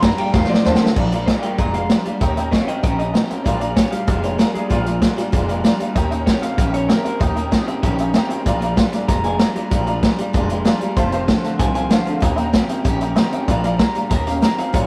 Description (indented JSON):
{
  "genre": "rockabilly",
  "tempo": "192 BPM",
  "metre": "4/4",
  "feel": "straight",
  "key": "Bb mixolydian",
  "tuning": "A4 = 440 Hz",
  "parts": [
    { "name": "electric guitar through a small old amp", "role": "melody", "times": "0.0-14.9 s", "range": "Eb4 to Bb5", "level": "-28 LUFS", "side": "equal", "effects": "none" },
    { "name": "honky-tonk upright piano", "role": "accompaniment", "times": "0.0-14.8 s", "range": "C5 to Db6", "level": "-28 LUFS", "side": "equal", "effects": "none" },
    { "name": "picked steel-string acoustic guitar", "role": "accompaniment", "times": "0.0-14.9 s", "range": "F2 to G4", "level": "-31 LUFS", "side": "equal", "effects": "none" },
    { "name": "electric guitar through a small old amp", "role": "riff", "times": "0.0-14.9 s", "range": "F2 to Db4", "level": "-27 LUFS", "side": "equal", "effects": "spring reverb" },
    { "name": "upright bass", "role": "bass", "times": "0.0-14.9 s", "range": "F1 to G2", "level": "-27 LUFS", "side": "equal", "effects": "none" },
    { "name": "vintage drum kit", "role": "drums", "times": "0.0-14.8 s", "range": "crash cymbal, hi-hat, kick drum, ride cymbal, snare drum", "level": "-21 LUFS", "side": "equal", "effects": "none" }
  ],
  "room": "moderate stone room reverb, RT60 1.0 s",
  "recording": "rough rehearsal-room recording, warm saturation",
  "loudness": "-18 LUFS",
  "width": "mono",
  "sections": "1.0-14.9 A section",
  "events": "drum fill 0.3-1.0; honky-tonk piano fill 7.8-8.5",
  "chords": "0.3 F7; 1.0 Bb7; 2.2 Eb7; 3.5 Bb7; 6.0 Eb7; 8.5 Bb7; 11.0 F7; 12.2 Eb7; 13.5 Bb7; 14.1 Eb7"
}